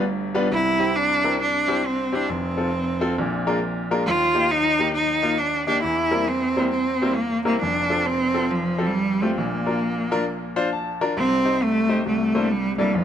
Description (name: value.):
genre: gospel.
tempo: 135 BPM.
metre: 4/4.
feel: swing 64% on 8ths.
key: unclear.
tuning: A4 = 439 Hz.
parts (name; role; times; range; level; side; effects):
clear cello; melody; 0.0-13.0 s; F3 to F4; -21 LUFS; right 1 dB; none.
clear baby grand piano; accompaniment; 0.0-13.0 s; F1 to Bb5; -24 LUFS; left 2 dB; none.
room: moderate echo chamber reverb, RT60 2.2 s.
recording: none.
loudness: -20 LUFS.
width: side -9 dB against mid.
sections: 0.0-11.2 A section; 11.2-13.0 A section.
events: grand piano fill 10.3-11.2.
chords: 0.0 G7; 0.5 C; 2.3 F; 3.2 Bb7; 4.1 Eb; 5.8 C7/E; 7.6 F; 9.4 Bb; 11.2 Cm; 12.1 C13.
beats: 0.07 | 0.52 0.96 1.40 1.84 | 2.29 2.73 3.18 3.62 | 4.06 4.51 4.95 5.39 | 5.84 6.28 6.72 7.17 | 7.61 8.06 8.50 8.95 | 9.39 9.83 10.28 10.72 | 11.17 11.61 12.05 12.50 | 12.94.